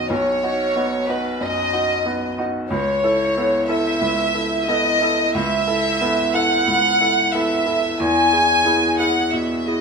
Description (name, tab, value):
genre	neoclassical piano and strings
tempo	91 BPM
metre	4/4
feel	rubato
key	unclear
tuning	A4 = 440 Hz
part	warm chamber violin section	melody	0.0-9.8 s	B4 to G#5	-18 LUFS	equal	none
part	bright upright piano	accompaniment	0.0-9.8 s	B1 to A4	-22 LUFS	right 1 dB	none
room	wet large studio reverb, RT60 1.2 s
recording	band playing live in one room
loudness	-16 LUFS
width	side -5 dB against mid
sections	0.0-9.8 A section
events	none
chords	0.0 B; 2.7 Aadd9/C#; 8.0 E